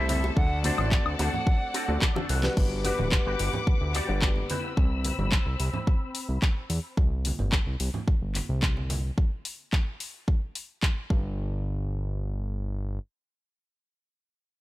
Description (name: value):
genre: nu-disco, nu disco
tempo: 109 BPM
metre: 4/4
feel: straight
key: G major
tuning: A4 = 442 Hz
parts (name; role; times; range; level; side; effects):
- bright silver concert flute; melody; 0.0-2.0 s; D5 to F#5; -34 LUFS; right 2 dB; analog delay
- warm grand piano; accompaniment; 0.0-4.5 s; G3 to F#5; -34 LUFS; left 1 dB; low-pass filter, analog delay
- clear studio string section; sustained chords; 0.0-7.0 s; C4 to E6; -35 LUFS; left 4 dB; sidechain pumping, low-pass filter
- electric guitar with an envelope filter; riff; 0.0-4.7 s; C4 to F#5; -35 LUFS; left 2 dB; ensemble chorus, analog delay
- fat analog bass; bass; 0.0-13.0 s; D1 to E2; -28 LUFS; equal; none
- pop drum kit; drums; 0.1-10.9 s; crash cymbal, handclaps, hi-hat, snare drum, toms, woodblock; -32 LUFS; left 2 dB; none
- congas and bongos; percussion; 0.1-9.0 s; none; -35 LUFS; right 2 dB; none
- electronic kick drum; drums; 0.4-11.2 s; none; -24 LUFS; equal; none
room: small room ambience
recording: dry, gritty hardware recording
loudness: -25 LUFS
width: side -16 dB against mid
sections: 0.0-2.6 A section; 2.6-11.4 B section; 11.4-13.6 C section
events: drop 0.0-2.6; clean electric guitar fill 1.7-2.6; drum fill 2.0-2.6; filter sweep on analog synth bass 2.6-9.2; filter sweep on grand piano 2.6-4.8; filter sweep on string section 2.6-7.0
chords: 0.4 D7; 2.6 Gmaj7; 4.5 Cmaj7; 7.0 Gsus4; 9.2 N.C.